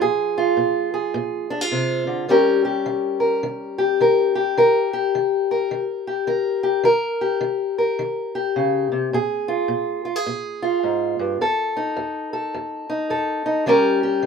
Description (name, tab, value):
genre	blues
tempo	105 BPM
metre	4/4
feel	swing 62% on 8ths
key	unclear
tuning	A4 = 439 Hz
part	fingerpicked steel-string acoustic guitar	solo	0.0-14.3 s	F2 to Bb4	-19 LUFS	left 1 dB	none
room	moderate booth ambience, RT60 0.2 s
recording	minimal, uncompressed stereo recording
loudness	-19 LUFS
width	side -6 dB against mid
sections	0.0-14.3 A section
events	none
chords	0.0 Bb7; 2.3 Eb7; 9.1 Bb5; 11.4 F7; 13.7 Eb7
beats	| 0.01 0.58 1.15 1.72 | 2.29 2.86 3.43 4.00 | 4.57 5.14 5.71 6.28 | 6.85 7.42 7.98 8.55 | 9.12 9.69 10.26 10.83 | 11.39 11.96 12.53 13.10 | 13.67 14.23